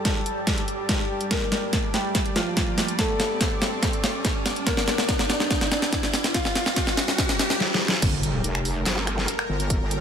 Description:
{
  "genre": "heavy wobble dubstep",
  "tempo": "143 BPM",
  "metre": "4/4",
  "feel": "half-time",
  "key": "G minor",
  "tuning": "A4 = 440 Hz",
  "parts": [
    { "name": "warm grand piano", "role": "melody", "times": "0.0-7.6 s", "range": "F3 to A5", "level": "-30 LUFS", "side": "equal", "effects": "digital delay" },
    { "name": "supersaw pad", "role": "sustained chords", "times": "0.0-10.0 s", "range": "G3 to A5", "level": "-33 LUFS", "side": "equal", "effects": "sidechain pumping, low-pass filter" },
    { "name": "riser, swell and impact", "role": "sound effects", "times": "0.0-9.7 s", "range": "none", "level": "-32 LUFS", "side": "equal", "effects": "none" },
    { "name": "dubstep drum kit", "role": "drums", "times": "0.1-10.0 s", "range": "crash cymbal, finger snaps, handclaps, hi-hat, snare drum", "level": "-24 LUFS", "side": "equal", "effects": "overdrive" },
    { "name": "electronic kick drum", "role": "drums", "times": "0.1-9.8 s", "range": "none", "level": "-27 LUFS", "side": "equal", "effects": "none" },
    { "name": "wobble bass", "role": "bass", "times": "8.0-10.0 s", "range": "F1 to G1", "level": "-26 LUFS", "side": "equal", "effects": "chorus, overdrive" },
    { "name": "vowel-sweep wobble bass", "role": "bass", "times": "8.9-9.3 s", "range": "G1", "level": "-27 LUFS", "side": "equal", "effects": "chorus, overdrive" }
  ],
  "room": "light reverb",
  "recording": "none",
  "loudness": "-21 LUFS",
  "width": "side -8 dB against mid",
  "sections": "0.0-8.0 A section; 8.0-10.0 B section",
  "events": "build-up 0.0-8.0; drum fill 0.0-7.6, 7.6-8.0; riser 0.0-7.6; filter sweep on supersaw synth 0.0-8.0; swell 7.2-8.0; drop 8.0-10.0; impact 8.0-9.7",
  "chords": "0.0 Gmadd9"
}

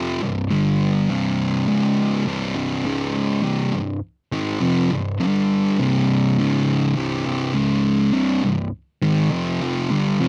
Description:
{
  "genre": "metal",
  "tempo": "102 BPM",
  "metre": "4/4",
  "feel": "straight",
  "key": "C minor",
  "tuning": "A4 = 440 Hz",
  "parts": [
    { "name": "thick fuzz guitar", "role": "solo", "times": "0.0-10.3 s", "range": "C2 to Ab3", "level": "-20 LUFS", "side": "equal", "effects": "distortion" }
  ],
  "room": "little or no reverb",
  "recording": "dry, close 1970s-style studio recording",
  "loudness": "-21 LUFS",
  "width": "mono",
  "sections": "0.0-10.3 A section",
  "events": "none",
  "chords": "0.0 C5; 0.5 G5; 1.1 C5; 1.7 Db5; 2.3 C5; 2.9 Db5; 3.4 Cm; 5.2 G5; 5.8 C5; 6.4 Db5; 7.0 C5; 7.6 Db5; 8.1 Cm"
}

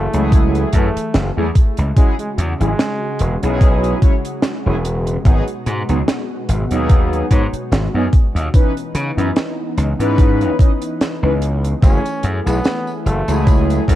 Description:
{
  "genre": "vaporwave",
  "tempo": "73 BPM",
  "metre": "4/4",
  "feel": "swing 55% on 16ths",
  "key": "F# dorian",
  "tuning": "A4 = 440 Hz",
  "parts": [
    { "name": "clear flugelhorn", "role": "melody", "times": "0.0-3.4, 11.8-13.6 s", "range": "G#3 to C#4", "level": "-26 LUFS", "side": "equal", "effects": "tape echo" },
    { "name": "lush unison pad", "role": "sustained chords", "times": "0.0-14.0 s", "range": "B2 to G#4", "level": "-27 LUFS", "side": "left 1 dB", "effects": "chorus" },
    { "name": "gritty slap bass", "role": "bass", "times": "0.0-14.0 s", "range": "E1 to C#3", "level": "-18 LUFS", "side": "equal", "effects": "overdrive" },
    { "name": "mellow synth brass", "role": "accompaniment", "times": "0.1-14.0 s", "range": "E3 to D#5", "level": "-22 LUFS", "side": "equal", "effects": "lush chorus, analog delay" },
    { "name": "deep reggae drum kit", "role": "drums", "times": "0.1-14.0 s", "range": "hi-hat, snare drum, tambourine", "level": "-23 LUFS", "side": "right 1 dB", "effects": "none" },
    { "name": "electronic kick drum", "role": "drums", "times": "0.3-14.0 s", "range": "none", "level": "-12 LUFS", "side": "equal", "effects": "none" }
  ],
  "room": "little or no reverb",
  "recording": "none",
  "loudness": "-14 LUFS",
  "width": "side -14 dB against mid",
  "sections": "0.0-14.0 A section",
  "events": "none",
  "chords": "0.0 F#m9; 2.0 E69; 5.3 G#m7; 8.5 C#m9; 11.8 F#m9"
}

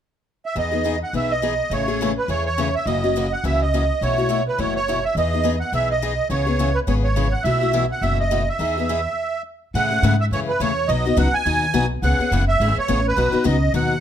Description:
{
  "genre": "acoustic string swing (jazz manouche)",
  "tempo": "209 BPM",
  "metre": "4/4",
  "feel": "swing 57% on 8ths",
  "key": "E major",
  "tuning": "A4 = 441 Hz",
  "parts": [
    { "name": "musette accordion", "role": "melody", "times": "0.5-14.0 s", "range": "B4 to G#5", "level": "-22 LUFS", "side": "right 3 dB", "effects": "plate reverb" },
    { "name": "picked steel-string acoustic guitar", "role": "accompaniment", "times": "0.6-13.9 s", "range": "B2 to G#4", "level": "-24 LUFS", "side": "left 5 dB", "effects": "none" },
    { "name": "upright bass", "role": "bass", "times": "0.6-14.0 s", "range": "F#1 to A2", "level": "-22 LUFS", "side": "equal", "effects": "none" }
  ],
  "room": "moderate club reverb, RT60 0.8 s",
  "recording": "none",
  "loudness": "-18 LUFS",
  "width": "side -9 dB against mid",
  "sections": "0.6-9.7 A section; 9.7-14.0 B section",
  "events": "stop 9.2-9.7",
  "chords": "0.0 N.C.; 0.6 Emaj7; 1.7 Amaj7; 2.9 F#7; 4.0 B7sus4; 5.2 Emaj7; 6.3 C#m7; 7.4 B7sus4; 8.6 Emaj7; 9.7 Amaj7; 10.9 B; 12.0 C#m7; 13.2 B"
}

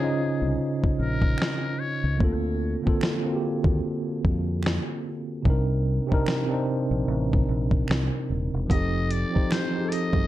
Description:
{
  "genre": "lo-fi hip hop",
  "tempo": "74 BPM",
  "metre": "4/4",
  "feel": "swing 58% on 16ths",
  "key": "Bb major",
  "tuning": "A4 = 440 Hz",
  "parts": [
    { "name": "trumpet with metal mute", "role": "melody", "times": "0.0-2.2, 8.7-10.3 s", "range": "Ab4 to Eb5", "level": "-33 LUFS", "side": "left 3 dB", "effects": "low-pass filter, tape echo" },
    { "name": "tine electric piano", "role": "accompaniment", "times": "0.0-10.3 s", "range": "C3 to Eb5", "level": "-26 LUFS", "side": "right 1 dB", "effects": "medium stereo tremolo, cassette tape, low-pass filter" },
    { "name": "fingered electric bass", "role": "bass", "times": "0.4-10.3 s", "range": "Eb1 to F2", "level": "-26 LUFS", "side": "equal", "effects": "none" },
    { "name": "dusty soul sampler-style drum kit", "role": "drums", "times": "0.8-10.3 s", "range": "finger snaps, hi-hat, kick drum, snare drum", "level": "-25 LUFS", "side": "equal", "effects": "vintage 12-bit sampler grit" },
    { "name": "finger snap", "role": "percussion", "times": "1.4-9.7 s", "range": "none", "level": "-42 LUFS", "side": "right 4 dB", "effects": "none" }
  ],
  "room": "light reverb",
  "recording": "dark, warm production",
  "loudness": "-23 LUFS",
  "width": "side -14 dB against mid",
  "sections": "0.0-10.3 A section",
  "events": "break 0.0-8.7",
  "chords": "0.0 Dbmaj7; 2.2 Bbmaj9/D; 5.5 Cm9; 8.7 F7"
}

